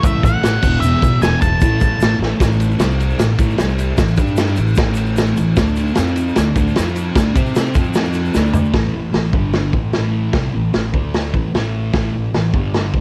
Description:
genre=garage rock duo or trio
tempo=152 BPM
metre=4/4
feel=straight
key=unclear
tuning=A4 = 440 Hz
part: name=octave-fuzz lead guitar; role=melody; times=0.0-2.2 s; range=E5 to A5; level=-23 LUFS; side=equal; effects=distortion, cassette tape
part: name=thick fuzz guitar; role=riff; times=0.0-13.0 s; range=E2 to C5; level=-22 LUFS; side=equal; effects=distortion, cassette tape
part: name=upright bass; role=bass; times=0.0-13.0 s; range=E1 to C3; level=-22 LUFS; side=equal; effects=none
part: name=raw garage drum kit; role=drums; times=0.0-13.0 s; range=crash cymbal, hi-hat, kick drum, ride cymbal, snare drum, toms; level=-20 LUFS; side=equal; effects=none
part: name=egg shaker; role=percussion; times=0.0-8.7 s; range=none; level=-42 LUFS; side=equal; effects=none
room=light reverb, studio reverb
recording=home recording on cassette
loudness=-17 LUFS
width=mono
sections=0.0-2.4 A section; 2.4-8.7 B section; 8.7-13.0 C section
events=drum fill 2.2, 8.3-8.7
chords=0.0 A; 0.6 E5; 1.6 A5; 2.8 C5; 3.2 A5; 3.6 C5; 4.0 A5; 4.2 G5; 4.6 A5; 5.6 D5; 6.0 F5; 6.4 D5; 6.8 F5; 7.2 D5; 7.3 C5; 7.7 F5; 8.3 D5; 8.7 A5; 9.3 G5; 9.7 A5; 10.9 D5; 11.3 A5; 12.5 G5

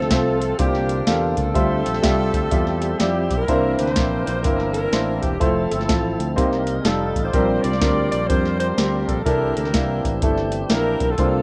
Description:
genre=uptempo gospel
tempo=125 BPM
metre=4/4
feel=swing 64% on 8ths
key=unclear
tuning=A4 = 440 Hz
part: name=clear alto saxophone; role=melody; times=0.0-11.4 s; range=G4 to D5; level=-30 LUFS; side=equal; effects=none
part: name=warm horn section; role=melody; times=0.0-11.4 s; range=Bb3 to D5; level=-32 LUFS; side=equal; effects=none
part: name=clear upright piano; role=accompaniment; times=0.0-11.4 s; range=Bb2 to E5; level=-25 LUFS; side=equal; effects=none
part: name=tonewheel organ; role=sustained chords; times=0.0-11.4 s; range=D3 to E5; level=-30 LUFS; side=equal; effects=slow rotary speaker, overdrive
part: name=fingered electric bass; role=bass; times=0.0-11.4 s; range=E1 to F2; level=-28 LUFS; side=equal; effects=none
part: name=soft vintage rhythm box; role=drums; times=0.0-11.3 s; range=hi-hat, kick drum, snare drum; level=-25 LUFS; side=equal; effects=none
room=studio ambience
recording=rough home demo mix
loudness=-20 LUFS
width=mono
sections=0.0-11.4 A section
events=none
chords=0.0 F/C; 0.6 C9sus4; 1.6 Dm11; 3.5 C9; 5.4 Fmaj7; 6.4 Cm7; 6.9 F9; 7.3 Bb69; 9.3 C13

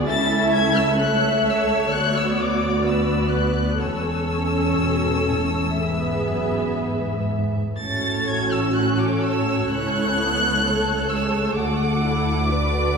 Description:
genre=classical, slow romantic movement for string orchestra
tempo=63 BPM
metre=4/4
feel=uneven beats, rubato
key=A major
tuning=A4 = 440 Hz
part: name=muted chamber violin section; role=second line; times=0.0-13.0 s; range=A4 to F#5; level=-26 LUFS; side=equal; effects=none
part: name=muted symphonic viola section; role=accompaniment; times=0.0-13.0 s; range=A3 to A4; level=-24 LUFS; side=right 1 dB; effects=none
part: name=muted chamber double bass section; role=bass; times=0.0-13.0 s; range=E1 to D2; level=-26 LUFS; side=equal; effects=none
part: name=muted chamber violin section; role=melody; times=0.1-13.0 s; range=D6 to A6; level=-25 LUFS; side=left 3 dB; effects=none
part: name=muted chamber cello section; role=bass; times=0.1-13.0 s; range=C#2 to B2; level=-28 LUFS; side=right 1 dB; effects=none
room=wet scoring stage reverb, RT60 2.0 s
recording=heard from further back in the room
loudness=-19 LUFS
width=side -5 dB against mid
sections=0.0-13.0 A section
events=none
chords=0.1 A/C#; 1.9 Bm/D; 3.8 Esus4; 5.8 E; 7.8 A; 9.7 A/C#; 11.6 Bm7/D

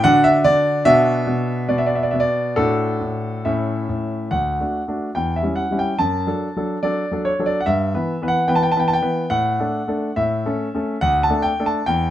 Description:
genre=classical-period piano sonatina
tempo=71 BPM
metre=2/4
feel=straight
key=D major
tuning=A4 = 440 Hz
part: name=clear concert grand piano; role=solo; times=0.0-12.1 s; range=D2 to A5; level=-17 LUFS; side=equal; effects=none
room=light reverb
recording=dark, warm production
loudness=-17 LUFS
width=side -12 dB against mid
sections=0.0-4.3 A section; 4.3-12.1 B section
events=none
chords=0.1 D; 0.9 Bm; 2.6 D/A; 3.5 A; 4.3 D; 5.2 C#dim/E; 6.0 D/F#; 7.7 Em/G; 9.3 D/A; 10.2 A; 11.0 D5

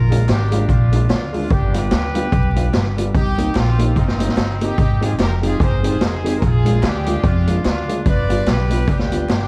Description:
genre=ska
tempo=147 BPM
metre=4/4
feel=swing 58% on 8ths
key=unclear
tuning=A4 = 440 Hz
part: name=clear horn section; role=melody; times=0.0-9.5 s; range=C4 to D5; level=-27 LUFS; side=equal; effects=tape echo
part: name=upright bass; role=bass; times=0.0-9.5 s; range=F1 to F2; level=-21 LUFS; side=equal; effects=none
part: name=electric guitar through a small old amp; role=accompaniment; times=0.1-9.2 s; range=G3 to G4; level=-29 LUFS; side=equal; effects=lush chorus
part: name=dark upright piano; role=stabs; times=0.1-9.2 s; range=G3 to G4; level=-30 LUFS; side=equal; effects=tape echo
part: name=street-band drum kit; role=drums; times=0.1-9.4 s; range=hi-hat, kick drum, snare drum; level=-22 LUFS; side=equal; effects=none
part: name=group handclap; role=percussion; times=0.3-9.4 s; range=none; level=-43 LUFS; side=equal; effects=none
room=light reverb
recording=dark, warm production, vinyl crackle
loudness=-17 LUFS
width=mono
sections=0.0-9.5 A section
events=none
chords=0.0 Bb7; 1.5 G7; 3.1 Cm7; 4.8 Abmaj7; 6.4 Bb7; 8.1 G7

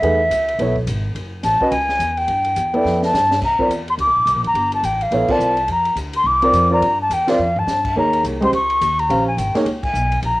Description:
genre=modal jazz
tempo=211 BPM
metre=4/4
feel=swing 61% on 8ths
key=unclear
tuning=A4 = 435 Hz
part: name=mellow silver concert flute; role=melody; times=0.0-10.4 s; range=Fb5 to D6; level=-17 LUFS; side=left 1 dB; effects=cassette tape
part: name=dark grand piano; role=accompaniment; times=0.0-9.7 s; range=Ab3 to F5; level=-19 LUFS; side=right 1 dB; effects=none
part: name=upright bass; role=bass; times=0.0-10.4 s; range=Gb1 to G2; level=-24 LUFS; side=equal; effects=none
part: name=open jazz drum kit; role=drums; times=0.0-10.3 s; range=crash cymbal, hi-hat, kick drum, ride cymbal, snare drum, toms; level=-30 LUFS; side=equal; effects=none
room=light reverb, studio ambience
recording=home recording on cassette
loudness=-15 LUFS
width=side -19 dB against mid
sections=0.0-3.4 A section; 3.4-10.4 B section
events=drum fill 2.8-3.4, 7.4; band accent 5.3, 7.2, 9.8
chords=0.0 Cb9sus4; 2.3 G7; 3.4 C13sus4; 8.0 Eb7sus4

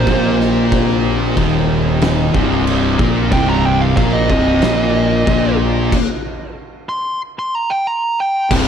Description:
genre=stoner and doom metal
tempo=92 BPM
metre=4/4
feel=straight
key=C minor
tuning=A4 = 440 Hz
part: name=fuzz lead guitar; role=melody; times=0.0-8.5 s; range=C5 to C6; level=-19 LUFS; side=right 1 dB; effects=distortion, tape echo
part: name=phased string machine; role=sustained chords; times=0.0-8.7 s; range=C4 to Eb5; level=-28 LUFS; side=right 1 dB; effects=ensemble chorus, phaser
part: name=cranked stack guitar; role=riff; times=0.0-8.7 s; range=C2 to Bb3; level=-22 LUFS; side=right 1 dB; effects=overdrive
part: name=thick fuzz guitar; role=riff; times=0.0-8.7 s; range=C2 to Bb3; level=-18 LUFS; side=left 8 dB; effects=distortion
part: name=thick fuzz guitar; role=riff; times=0.0-8.7 s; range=C2 to Bb3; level=-21 LUFS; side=right 12 dB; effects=distortion
part: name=fuzz fingered electric bass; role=bass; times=0.0-8.7 s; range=C1 to Bb1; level=-19 LUFS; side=equal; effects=overdrive
part: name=oversized low-tuned drum kit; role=drums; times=0.1-8.7 s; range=crash cymbal, kick drum, snare drum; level=-20 LUFS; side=right 1 dB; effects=none
room=light reverb, small room reverb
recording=none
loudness=-13 LUFS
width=side -8 dB against mid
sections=0.0-8.5 A section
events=lead electric guitar solo 0.0-8.5; stop 5.9-8.5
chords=0.0 Cm

